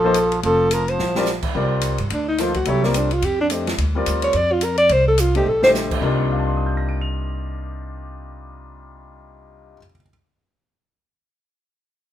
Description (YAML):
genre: modal jazz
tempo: 214 BPM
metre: 4/4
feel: swing 59% on 8ths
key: unclear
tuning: A4 = 444 Hz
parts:
  - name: mellow alto saxophone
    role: melody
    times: 0.0-5.7 s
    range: Bb3 to D5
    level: -18 LUFS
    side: equal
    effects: none
  - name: trombone with metal mute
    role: second line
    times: 0.0-1.4 s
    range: F3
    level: -23 LUFS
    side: right 3 dB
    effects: none
  - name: clear concert grand piano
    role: accompaniment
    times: 0.0-10.1 s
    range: C3 to F7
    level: -24 LUFS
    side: left 3 dB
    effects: none
  - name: upright bass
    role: bass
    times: 0.0-9.7 s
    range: F1 to G2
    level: -24 LUFS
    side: equal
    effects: none
  - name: open jazz drum kit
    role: drums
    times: 0.1-6.0 s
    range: crash cymbal, hi-hat, kick drum, ride cymbal, snare drum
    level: -28 LUFS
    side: equal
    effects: none
room: light reverb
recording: minimal, uncompressed stereo recording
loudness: -17 LUFS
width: side -11 dB against mid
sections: 0.0-1.5 A section; 1.5-6.0 B section; 6.0-8.3 C section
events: drum fill 1.0, 5.5; alto saxophone solo 1.5-6.0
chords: 0.0 Bbsus2; 1.5 Bbadd9/C; 6.0 Cm11